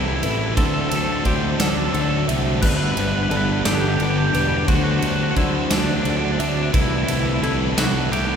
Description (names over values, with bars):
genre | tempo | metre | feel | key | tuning
post-rock | 58 BPM (dotted quarters) | 6/8 | straight | unclear | A4 = 440 Hz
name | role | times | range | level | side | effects
clean electric guitar | melody | 0.0-8.4 s | D4 to B4 | -26 LUFS | equal | none
glassy FM pad | sustained chords | 0.0-8.4 s | G4 to D6 | -34 LUFS | right 2 dB | none
clean electric guitar | arpeggios | 0.0-8.4 s | A4 to E5 | -31 LUFS | right 2 dB | none
electric guitar through a small old amp | arpeggios | 0.0-8.4 s | C3 to A4 | -30 LUFS | left 4 dB | none
sludgy distorted guitar | riff | 0.0-8.4 s | G2 to E4 | -26 LUFS | right 5 dB | overdrive
thick fuzz guitar | riff | 0.0-8.4 s | G2 to E4 | -26 LUFS | left 6 dB | distortion
fuzz fingered electric bass | bass | 0.0-8.4 s | E1 to D2 | -24 LUFS | equal | overdrive
huge arena drum kit | drums | 0.2-8.3 s | crash cymbal, kick drum, ride cymbal, snare drum | -24 LUFS | equal | none
room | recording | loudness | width
wet cathedral reverb, RT60 6.4 s | recorded in a church or concert hall | -17 LUFS | side -7 dB against mid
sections
0.0-8.4 A section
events
none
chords
0.0 Am7/C; 0.6 D7; 2.6 Gmaj7; 4.7 D7; 6.7 Am7/C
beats
| 0.57 1.60 | 2.63 3.65 | 4.68 5.71 | 6.74 7.77